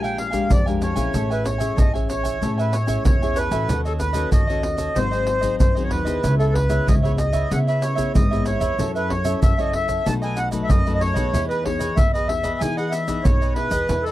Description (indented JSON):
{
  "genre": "samba and choro",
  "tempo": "94 BPM",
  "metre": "4/4",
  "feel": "straight",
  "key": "E major",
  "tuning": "A4 = 436 Hz",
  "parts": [
    { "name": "accordion", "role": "melody", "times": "0.0-14.1 s", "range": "A4 to A5", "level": "-24 LUFS", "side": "equal", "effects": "none" },
    { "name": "cavaquinho", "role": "accompaniment", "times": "0.0-14.1 s", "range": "D4 to G#5", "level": "-29 LUFS", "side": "right 4 dB", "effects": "none" },
    { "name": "nylon-string guitar", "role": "accompaniment", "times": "0.0-14.1 s", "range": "E#2 to A4", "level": "-28 LUFS", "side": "left 6 dB", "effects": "none" },
    { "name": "upright bass", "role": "bass", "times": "0.0-14.1 s", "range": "G#1 to E3", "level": "-25 LUFS", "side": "equal", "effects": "none" },
    { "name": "tube shaker, pandeiro and surdo", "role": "percussion", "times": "0.0-14.1 s", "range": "none", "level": "-22 LUFS", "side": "equal", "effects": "none" }
  ],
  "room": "light reverb",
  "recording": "dry, close 1970s-style studio recording",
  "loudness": "-18 LUFS",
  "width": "side -15 dB against mid",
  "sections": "0.0-14.1 A section",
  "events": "none",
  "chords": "0.0 A#6; 1.1 Amaj7; 3.7 D#m7b5; 5.0 G#7; 6.2 C#m7; 8.8 F#m7; 10.1 B7; 11.3 Emaj7"
}